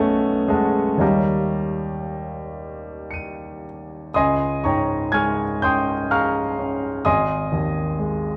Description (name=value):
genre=classical, impressionist solo piano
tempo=56-65 BPM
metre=3/4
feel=rubato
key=Db lydian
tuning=A4 = 439 Hz
part: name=clear baby grand piano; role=solo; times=0.0-8.4 s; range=Ab1 to Eb7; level=-22 LUFS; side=equal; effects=none
room=wet recital hall reverb, RT60 1.4 s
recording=dark, warm production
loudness=-22 LUFS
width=mono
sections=0.0-4.1 A section; 4.1-8.4 B section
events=none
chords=0.0 Cb9; 1.0 Eb9; 4.1 Dbmaj7; 7.1 Ab5